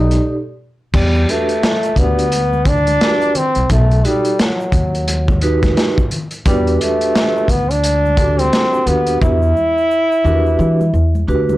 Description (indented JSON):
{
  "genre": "hip hop, jazz-hop",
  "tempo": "87 BPM",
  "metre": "4/4",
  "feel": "swing 60% on 16ths",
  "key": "E minor",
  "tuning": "A4 = 437 Hz",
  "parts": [
    { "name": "clear trombone", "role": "melody", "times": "0.0-11.2 s", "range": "F#3 to E4", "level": "-16 LUFS", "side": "equal", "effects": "none" },
    { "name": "vibraphone with medium mallets", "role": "accompaniment", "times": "0.0-11.6 s", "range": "D4 to D5", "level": "-19 LUFS", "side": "right 2 dB", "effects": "none" },
    { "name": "upright bass", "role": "bass", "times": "0.0-11.6 s", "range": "B1 to E3", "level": "-16 LUFS", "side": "equal", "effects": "none" },
    { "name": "crunchy breakbeat drum kit", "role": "drums", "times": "0.1-9.4 s", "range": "crash cymbal, hi-hat, kick drum, rim click, snare drum", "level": "-18 LUFS", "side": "equal", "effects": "none" },
    { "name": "congas and egg shaker", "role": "percussion", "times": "0.1-11.6 s", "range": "none", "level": "-29 LUFS", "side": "left 2 dB", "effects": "none" }
  ],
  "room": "light reverb",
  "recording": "blown-out, overdriven recording, overdrive",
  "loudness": "-12 LUFS",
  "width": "side -16 dB against mid",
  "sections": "0.9-11.6 A section",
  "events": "break 0.2-0.9; drum fill 9.2-11.6",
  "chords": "0.0 B7alt; 0.9 Em9 (rootless); 3.7 B(b13); 6.5 Em9"
}